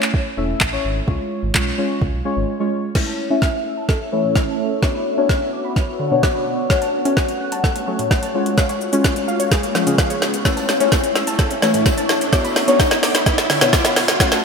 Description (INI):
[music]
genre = dance-pop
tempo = 128 BPM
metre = 4/4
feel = straight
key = unclear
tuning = A4 = 440 Hz
[part]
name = deep mellow chord stab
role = accompaniment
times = 0.0-14.4 s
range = G#3 to E5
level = -21 LUFS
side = left 3 dB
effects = chorus, sidechain pumping, low-pass filter
[part]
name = smooth R&B drum kit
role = drums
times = 0.0-14.4 s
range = crash cymbal, handclaps, hi-hat, kick drum, shaker, snare drum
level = -18 LUFS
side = equal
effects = none
[part]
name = sub bass with octave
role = bass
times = 0.4-2.4 s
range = E1 to C#2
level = -24 LUFS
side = equal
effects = sidechain pumping
[part]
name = shimmering ambient pad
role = sustained chords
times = 3.7-14.4 s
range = G#3 to F#5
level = -24 LUFS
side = equal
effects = chorus, built-in reverb, phaser, sidechain pumping, low-pass filter
[part]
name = wide unison pluck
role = arpeggios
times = 3.0-14.4 s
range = A2 to F#6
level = -26 LUFS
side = right 2 dB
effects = sidechain pumping, low-pass filter, ping-pong delay
[part]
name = riser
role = sound effects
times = 5.5-14.4 s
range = none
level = -27 LUFS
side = equal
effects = none
[part]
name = tambourine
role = percussion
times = 10.5-14.4 s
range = none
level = -37 LUFS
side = left 6 dB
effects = none
[sound]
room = moderate lush hall reverb, RT60 1.9 s, digital ambience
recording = bright 1980s-style digital production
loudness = -16 LUFS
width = side -5 dB against mid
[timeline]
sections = 0.0-3.0 A section; 3.0-14.4 B section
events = silent gap 2.5-3.0; build-up 3.0-14.4; drum fill 3.0-14.4; filter sweep 3.0-14.4; riser 5.5-14.4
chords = 0.0 A; 1.1 C#; 3.0 A; 4.8 Bmadd9; 6.7 F#m/A; 8.3 C#; 10.5 A; 12.3 Bmadd9